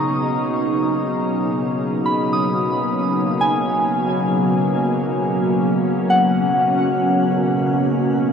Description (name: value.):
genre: ambient.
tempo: free time.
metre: none.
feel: none.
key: unclear.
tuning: A4 = 439 Hz.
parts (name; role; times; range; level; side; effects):
evolving wavetable pad; sustained chords; 0.0-8.3 s; B2 to G#4; -19 LUFS; equal; chorus, built-in reverb, shimmer reverb.
soft synth bell; arpeggios; 0.0-8.3 s; F#5 to D#6; -22 LUFS; left 1 dB; chorus, shimmer reverb, diffuse ambient delay.
organ-like drone; drone; 0.0-8.3 s; C#3 to C#4; -26 LUFS; right 1 dB; ensemble chorus, built-in reverb.
room: wet huge ambient reverb, RT60 7.5 s.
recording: none.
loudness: -17 LUFS.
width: side -7 dB against mid.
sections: 0.0-8.3 A section.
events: none.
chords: 0.0 G#m9.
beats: free time.